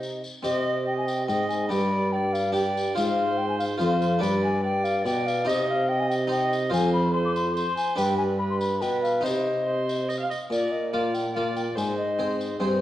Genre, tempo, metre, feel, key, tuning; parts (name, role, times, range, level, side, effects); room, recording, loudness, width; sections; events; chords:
classical, renaissance-style consort dance; 143 BPM; 3/4; straight; C harmonic minor; A4 = 437 Hz
mellow baroque flute; melody; 0.0-12.8 s; C5 to D6; -27 LUFS; left 2 dB
warm viola; second line; 0.0-12.7 s; B4 to F5; -32 LUFS; right 3 dB
harpsichord; accompaniment; 0.0-12.8 s; F2 to D5; -28 LUFS; left 1 dB
mellow bassoon; bass; 0.0-12.8 s; F2 to C3; -29 LUFS; right 1 dB
tambourine; percussion; 0.0-12.6 s; -41 LUFS; left 3 dB
wet recital hall reverb, RT60 1.5 s; worn, warbling old tape, cassette tape, warbly pitch drift; -23 LUFS; side -13 dB against mid
0.4-10.5 A section; 10.5-12.8 B section
0.4 Cm; 1.7 G; 3.0 Fm/Ab; 4.2 G; 5.5 Cm; 6.7 F5; 8.0 G; 9.2 Cm; 10.5 Bb; 11.8 Ab